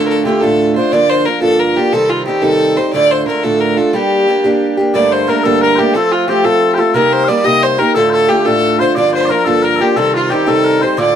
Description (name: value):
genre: celtic folk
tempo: 119 BPM (dotted quarters)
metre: 6/8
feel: straight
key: G minor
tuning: A4 = 442 Hz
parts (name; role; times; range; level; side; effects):
- rich fiddle; melody; 0.0-11.2 s; F4 to Eb5; -14 LUFS; equal; none
- picked steel-string acoustic guitar; accompaniment; 0.0-11.2 s; D2 to G4; -14 LUFS; right 2 dB; none
- mellow small bagpipes; second line; 4.9-11.2 s; F4 to F5; -17 LUFS; left 7 dB; none
room: moderate studio reverb, RT60 0.5 s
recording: dry, close 1970s-style studio recording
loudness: -10 LUFS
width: side -9 dB against mid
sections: 0.0-4.9 A section; 4.9-11.2 A section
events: none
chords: 0.0 Dm; 0.9 Gm7; 1.9 Cm; 2.9 Dm; 3.9 Gm; 4.9 Gmadd9; 5.9 F; 7.0 Cm7; 8.0 Dm; 9.0 Gm7; 10.0 Cm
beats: 0.43 | 0.93 1.43 | 1.93 2.43 | 2.93 3.44 | 3.94 4.44 | 4.94 5.44 | 5.95 6.45 | 6.95 7.45 | 7.96 8.46 | 8.96 9.47 | 9.97 10.47 | 10.98